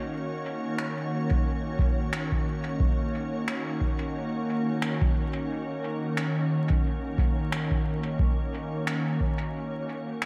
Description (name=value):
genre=ambient dub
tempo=89 BPM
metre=4/4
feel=swing 57% on 16ths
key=Eb minor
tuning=A4 = 437 Hz
part: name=soft additive organ-like pad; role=sustained chords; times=0.0-10.3 s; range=Eb3 to Db5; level=-31 LUFS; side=equal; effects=ensemble chorus, built-in reverb
part: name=finger snaps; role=drums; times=0.8-10.3 s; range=none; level=-39 LUFS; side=equal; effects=dub echo
part: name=electronic kick drum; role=drums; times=1.3-9.4 s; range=none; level=-29 LUFS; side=equal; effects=none
room=light reverb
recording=vinyl crackle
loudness=-28 LUFS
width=mono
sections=0.0-10.3 A section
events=none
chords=0.0 Ebm7